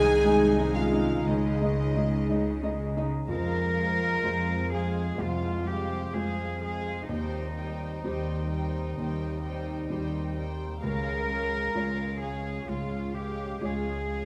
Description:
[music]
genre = cinematic, emotional film score for orchestra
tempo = 58-66 BPM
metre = 4/4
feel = rubato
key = F minor from 3.3 s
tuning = A4 = 439 Hz
[part]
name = dark studio violin section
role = melody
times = 0.0-14.3 s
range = Eb5 to Ab5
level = -46 LUFS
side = equal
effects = none
[part]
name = mellow clarinet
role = second line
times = 0.0-2.8 s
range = Ab3 to Eb4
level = -38 LUFS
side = equal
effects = none
[part]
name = warm studio violin section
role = second line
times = 0.0-14.3 s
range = C5 to Ab5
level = -44 LUFS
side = equal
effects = none
[part]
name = dark studio viola section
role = accompaniment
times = 0.0-14.3 s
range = G3 to Eb4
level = -38 LUFS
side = equal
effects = none
[part]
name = felt-muted upright piano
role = accompaniment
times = 0.0-14.3 s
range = C2 to Eb5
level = -37 LUFS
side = equal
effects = none
[part]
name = mellow French horn section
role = sustained chords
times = 0.0-14.3 s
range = F3 to Ab4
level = -34 LUFS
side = equal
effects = none
[part]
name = concert harp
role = arpeggios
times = 0.0-14.3 s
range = Db3 to Eb5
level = -41 LUFS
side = equal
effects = none
[part]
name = warm studio cello section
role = bass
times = 0.0-14.3 s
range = C3 to Bb4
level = -35 LUFS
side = equal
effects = none
[part]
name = warm studio double bass section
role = bass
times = 0.0-14.3 s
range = C2 to F2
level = -35 LUFS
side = equal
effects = none
[sound]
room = moderate scoring stage reverb, RT60 1.6 s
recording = none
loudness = -29 LUFS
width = mono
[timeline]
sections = 0.0-3.3 A section; 3.3-14.3 B section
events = none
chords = 0.0 Ab/C; 1.3 Dbsus2; 3.3 Fm; 7.1 Cm/Eb; 10.8 Db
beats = 0.25 1.27 2.30 | 3.29 4.24 5.19 6.14 | 7.09 8.04 8.98 9.90 | 10.82 11.74 12.67 13.60

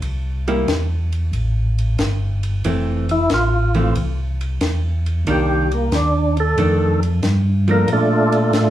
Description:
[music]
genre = soul jazz organ trio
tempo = 92 BPM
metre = 4/4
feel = swing 68% on 8ths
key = unclear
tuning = A4 = 440 Hz
[part]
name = mellow tonewheel organ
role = bass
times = 0.0-8.7 s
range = F1 to Bb2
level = -19 LUFS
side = equal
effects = chorus vibrato, stopped rotary speaker
[part]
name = compact cocktail drum kit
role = drums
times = 0.0-8.7 s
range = hi-hat, ride cymbal, snare drum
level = -28 LUFS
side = left 1 dB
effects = none
[part]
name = vintage hollow-body jazz guitar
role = accompaniment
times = 0.5-7.9 s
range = Eb3 to E4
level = -22 LUFS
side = right 1 dB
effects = none
[part]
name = percussive tonewheel organ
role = melody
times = 3.1-8.7 s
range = A3 to Bb4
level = -18 LUFS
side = equal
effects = slow rotary speaker, overdrive, chorus vibrato, plate reverb
[sound]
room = wet club reverb, RT60 0.8 s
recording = heard from further back in the room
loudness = -16 LUFS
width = side -12 dB against mid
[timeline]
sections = 0.0-8.7 A section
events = tonewheel organ solo 0.0-8.7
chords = 0.0 C; 2.6 Fmaj7; 5.3 Cm9; 6.6 F13; 7.9 Bbmaj7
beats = | 0.03 0.68 1.34 1.99 | 2.65 3.30 3.96 4.61 | 5.27 5.92 6.58 7.23 | 7.89 8.54

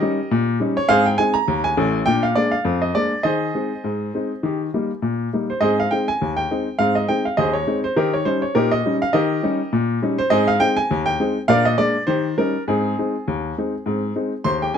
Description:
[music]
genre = ragtime piano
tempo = 102 BPM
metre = 2/4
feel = swing 57% on 16ths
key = Ab major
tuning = A4 = 442 Hz
[part]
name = clear upright piano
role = solo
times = 0.0-14.8 s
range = A1 to C6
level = -18 LUFS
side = equal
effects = none
[sound]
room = light reverb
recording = dark, warm production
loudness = -18 LUFS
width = side -8 dB against mid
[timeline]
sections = 0.0-14.8 A section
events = none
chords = 0.0 Eb7; 0.9 Ab; 2.1 Bb7; 3.2 Ab/Eb; 4.4 Eb; 5.6 Ab; 8.0 Eb7; 10.3 Ab; 11.5 Bb7; 12.1 Eb7; 12.7 Ab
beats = 0.32 | 0.90 1.49 | 2.07 2.66 | 3.25 3.84 | 4.43 5.02 | 5.61 6.20 | 6.79 7.38 | 7.96 8.55 | 9.14 9.73 | 10.31 10.90 | 11.49 12.08 | 12.67 13.26 | 13.85 14.44

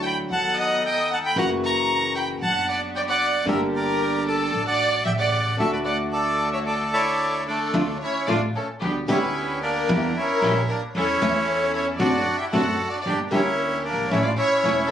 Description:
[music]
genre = tango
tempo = 113 BPM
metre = 4/4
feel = rubato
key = D major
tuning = A4 = 440 Hz
[part]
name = warm studio violin section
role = second line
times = 0.0-14.9 s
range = G4 to A#5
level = -27 LUFS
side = left 2 dB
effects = none
[part]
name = flamenco guitar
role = accompaniment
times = 0.0-14.7 s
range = C3 to G4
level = -25 LUFS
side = left 1 dB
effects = none
[part]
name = rich chamber string section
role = stabs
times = 0.0-14.9 s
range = C#3 to A4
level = -32 LUFS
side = equal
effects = none
[part]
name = upright bass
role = bass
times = 0.0-14.9 s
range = E1 to E2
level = -30 LUFS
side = right 1 dB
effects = none
[part]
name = bandoneon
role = melody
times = 0.1-14.9 s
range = G3 to C#6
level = -23 LUFS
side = right 1 dB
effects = plate reverb
[sound]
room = moderate studio reverb, RT60 0.7 s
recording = recorded on a phone in the room, club reverb, compression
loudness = -20 LUFS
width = side -9 dB against mid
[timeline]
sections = 0.0-7.7 A section; 7.7-14.9 B section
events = none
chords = 0.3 B7/D#; 1.4 F#7; 2.4 Bm/F#; 3.5 Gm; 4.5 D/A; 5.1 A7; 5.6 D; 7.7 Dm; 8.8 G/D; 9.9 Edim; 11.0 A/E; 12.0 D7/F#; 13.1 Gm; 14.1 A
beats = 0.30 0.84 | 1.37 1.89 2.42 2.94 | 3.47 4.00 4.53 5.05 | 5.58 6.12 6.65 7.20 | 7.74 8.28 8.82 9.35 | 9.89 10.42 10.95 11.48 | 12.00 12.53 13.05 13.58 | 14.11 14.64

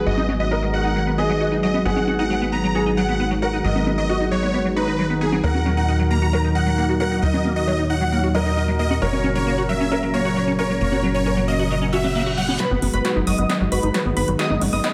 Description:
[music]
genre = uplifting trance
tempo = 134 BPM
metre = 4/4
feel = straight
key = G# minor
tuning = A4 = 442 Hz
[part]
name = felt-muted upright piano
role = second line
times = 0.0-12.5 s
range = D#4 to C#5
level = -30 LUFS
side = equal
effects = analog delay
[part]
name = lush unison pad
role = sustained chords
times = 0.0-14.9 s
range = A#2 to F#4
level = -26 LUFS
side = equal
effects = chorus
[part]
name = tight sequencer bass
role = bass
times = 0.0-14.8 s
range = F#1 to D#2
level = -27 LUFS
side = equal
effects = none
[part]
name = supersaw chords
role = melody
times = 0.1-14.9 s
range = G#4 to A#5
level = -28 LUFS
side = equal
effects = low-pass filter, analog delay
[part]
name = liquid acid bass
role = arpeggios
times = 0.1-14.9 s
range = F#3 to F#4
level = -28 LUFS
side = equal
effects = lush chorus, analog delay
[part]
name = big-room dance drum kit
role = drums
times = 0.2-14.9 s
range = congas, hi-hat, snare drum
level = -30 LUFS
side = equal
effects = high-pass filter on perc, studio reverb, high-pass filter on snare, high-pass filter on hats
[part]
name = reverse cymbal and riser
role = sound effects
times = 11.9-14.9 s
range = none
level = -36 LUFS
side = equal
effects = none
[part]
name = plucky unison lead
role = second line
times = 12.6-14.9 s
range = B5 to D#6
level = -30 LUFS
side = equal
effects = analog delay
[sound]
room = moderate plate reverb, RT60 1.3 s, digital ambience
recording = dreamy mix soaked in reverb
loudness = -20 LUFS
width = mono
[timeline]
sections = 0.0-12.6 A section; 12.6-14.9 B section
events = reverse cymbal 11.9-12.6; build-up 12.6-14.9; drum fill 12.6-14.9; filter sweep on supersaw synth 12.6-14.9; filter sweep on acid bass 12.6-14.9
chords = 0.0 G#m7; 5.4 D#m; 9.0 F#; 12.6 G#m7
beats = | 0.06 0.51 0.96 1.41 | 1.85 2.30 2.75 3.20 | 3.65 4.09 4.54 4.99 | 5.44 5.88 6.33 6.78 | 7.23 7.67 8.12 8.57 | 9.02 9.47 9.91 10.36 | 10.81 11.26 11.71 12.15 | 12.60 13.05 13.50 13.94 | 14.39 14.84

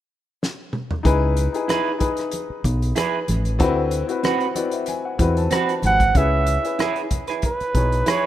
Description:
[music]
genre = lush 1970s-style soul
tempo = 94 BPM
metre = 4/4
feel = swing 54% on 16ths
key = C# minor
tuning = A4 = 440 Hz
[part]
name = warm soul drum kit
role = drums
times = 0.4-8.2 s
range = hi-hat, kick drum, rim click, snare drum, toms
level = -25 LUFS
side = equal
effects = none
[part]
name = warm baby grand piano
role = accompaniment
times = 1.0-8.3 s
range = C4 to B5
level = -24 LUFS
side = left 5 dB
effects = none
[part]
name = fingered electric bass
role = bass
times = 1.1-8.0 s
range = G#1 to E2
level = -20 LUFS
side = equal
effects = none
[part]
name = congas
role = percussion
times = 1.4-8.2 s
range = none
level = -32 LUFS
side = right 2 dB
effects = none
[part]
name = electric guitar through a small old amp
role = riff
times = 1.7-8.3 s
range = C4 to B4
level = -25 LUFS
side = right 6 dB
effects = harmonic tremolo
[part]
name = warm flugelhorn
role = melody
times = 5.9-8.3 s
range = B4 to F#5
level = -21 LUFS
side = right 3 dB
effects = none
[sound]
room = light reverb, studio ambience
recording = rough home demo mix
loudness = -18 LUFS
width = side -12 dB against mid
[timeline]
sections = 0.0-1.0 A section; 1.0-6.2 B section; 6.2-8.3 C section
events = drum fill 0.4-1.0; grand piano fill 4.2-6.2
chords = 0.0 N.C.; 1.0 C#m7; 3.6 D13; 6.2 C#m7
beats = 0.41 | 1.05 1.69 2.33 2.96 | 3.60 4.24 4.88 5.51 | 6.15 6.79 7.43 8.07

